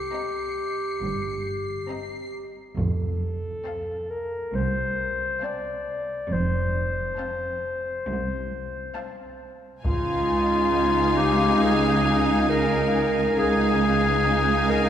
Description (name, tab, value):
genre	cinematic, suspense film score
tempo	68 BPM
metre	4/4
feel	straight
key	unclear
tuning	A4 = 439 Hz
part	mellow clarinet	second line	0.0-14.9 s	F4 to D5	-26 LUFS	left 2 dB	none
part	rich symphonic violin section	texture	0.0-2.3 s	C7 to Db7	-38 LUFS	left 2 dB	none
part	rich studio violin section	melody	0.1-14.9 s	Ab5 to Bb5	-33 LUFS	left 4 dB	none
part	rich symphonic violin section	second line	0.1-14.9 s	Eb5 to F5	-32 LUFS	left 2 dB	none
part	rich symphonic viola section	accompaniment	0.1-14.9 s	C4 to Eb4	-30 LUFS	left 1 dB	none
part	clear symphonic cello section	bass	1.0-14.9 s	C2 to G2	-28 LUFS	right 1 dB	none
part	rich symphonic double bass section	bass	1.0-14.9 s	F1 to Db2	-29 LUFS	right 3 dB	none
part	taiko ensemble	drums	2.8-4.5, 9.8-11.6 s	none	-30 LUFS	equal	none
room	wet church reverb, RT60 3.1 s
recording	recorded in a church or concert hall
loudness	-22 LUFS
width	side -9 dB against mid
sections	0.0-14.9 A section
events	none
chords	0.0 Cm7; 2.8 F; 9.8 Dbadd9